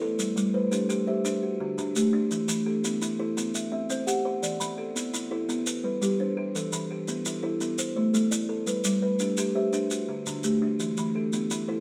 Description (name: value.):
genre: southern african traditional, mbira-style interlocking cycle.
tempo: 113 BPM (dotted quarters).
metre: 12/8.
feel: straight.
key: G major.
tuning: A4 = 440 Hz.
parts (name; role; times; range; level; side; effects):
buzzing kalimba; arpeggios; 0.0-11.8 s; D3 to E5; -32 LUFS; equal; none.
kalimba; arpeggios; 0.0-11.8 s; D3 to F#5; -30 LUFS; equal; none.
maracas; percussion; 0.2-11.7 s; none; -36 LUFS; equal; none.
room: moderate studio reverb, RT60 0.9 s.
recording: band playing live in one room.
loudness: -28 LUFS.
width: mono.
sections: 0.2-11.8 A section.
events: none.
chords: 0.2 G; 1.3 D; 2.3 Em; 3.4 C; 4.4 Em; 5.5 G; 6.6 Em; 7.6 Am; 8.7 G; 9.7 D; 10.8 Em.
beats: | 0.19 0.72 1.25 1.78 | 2.31 2.84 3.37 3.90 | 4.43 4.96 5.49 6.02 | 6.55 7.08 7.61 8.14 | 8.67 9.21 9.74 10.27 | 10.80 11.33.